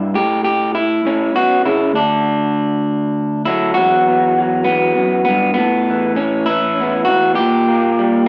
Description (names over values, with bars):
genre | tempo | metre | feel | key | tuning
folk, solo fingerstyle acoustic guitar | 66 BPM (dotted quarters) | 6/8 | straight | unclear | A4 = 440 Hz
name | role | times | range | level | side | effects
electric guitar through a small old amp | solo | 0.0-8.3 s | D2 to G4 | -16 LUFS | equal | none
room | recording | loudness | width
wet stone room reverb, RT60 1.2 s | band playing live in one room | -16 LUFS | mono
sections
0.0-3.8 A section; 3.8-8.3 B section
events
none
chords
0.1 A; 1.9 Dadd9; 3.8 Emadd9; 5.6 Aadd9; 7.4 Gm/Bb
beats
| 0.13 1.03 | 1.94 2.85 | 3.76 4.66 | 5.57 6.47 | 7.38